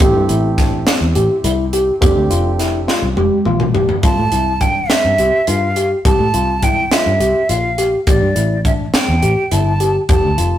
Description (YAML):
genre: progressive instrumental, band music in an uneven meter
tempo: 208 BPM (eighths)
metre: 7/8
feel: straight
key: C mixolydian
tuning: A4 = 437 Hz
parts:
  - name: dark baby grand piano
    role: accompaniment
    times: 0.0-4.0 s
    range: A3 to G4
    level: -22 LUFS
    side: right 3 dB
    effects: none
  - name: mellow tine electric piano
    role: arpeggios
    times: 0.0-10.6 s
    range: C4 to G4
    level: -18 LUFS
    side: left 2 dB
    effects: none
  - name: fingered electric bass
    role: bass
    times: 0.0-10.6 s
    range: F1 to A2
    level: -18 LUFS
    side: equal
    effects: none
  - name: crisp fusion drum kit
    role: drums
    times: 0.0-10.5 s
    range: hi-hat, kick drum, snare drum, toms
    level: -17 LUFS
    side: equal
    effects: none
  - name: jazz flute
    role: melody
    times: 4.0-10.6 s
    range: D5 to A5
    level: -18 LUFS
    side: right 2 dB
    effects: none
room: moderate stone room reverb, RT60 1.0 s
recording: rough rehearsal-room recording, tube saturation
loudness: -12 LUFS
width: side -11 dB against mid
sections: 0.0-4.0 A section; 4.0-10.6 B section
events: drum fill 2.9-4.0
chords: 0.0 Am7; 2.0 F6; 4.0 Csus4; 8.1 A7(no3)